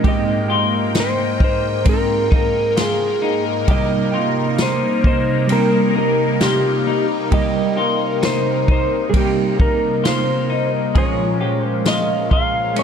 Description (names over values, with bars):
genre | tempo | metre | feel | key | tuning
dream pop | 66 BPM | 4/4 | straight | unclear | A4 = 440 Hz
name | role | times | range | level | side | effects
semi-hollow electric guitar | accompaniment | 0.0-12.8 s | Bb2 to C5 | -25 LUFS | right 6 dB | harmonic tremolo, analog chorus
phased analog pad | sustained chords | 0.0-12.8 s | Ab2 to G5 | -21 LUFS | equal | phaser, chorus
semi-hollow electric guitar | arpeggios | 0.0-12.8 s | C4 to Ab4 | -24 LUFS | left 6 dB | lush chorus, ping-pong delay
vintage drum kit | drums | 0.0-12.8 s | kick drum, ride cymbal, snare drum, tambourine | -20 LUFS | equal | none
clean lap steel guitar | melody | 0.1-12.8 s | G4 to F5 | -21 LUFS | equal | ping-pong delay
room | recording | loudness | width
light reverb, studio reverb | dark, warm production | -15 LUFS | side -7 dB against mid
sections
0.0-12.8 A section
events
none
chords
0.0 Abmaj7; 3.7 Cm7; 11.0 Bbm7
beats
| 0.05 0.96 1.87 2.78 | 3.69 4.59 5.50 6.41 | 7.32 8.23 9.14 10.05 | 10.96 11.87 12.78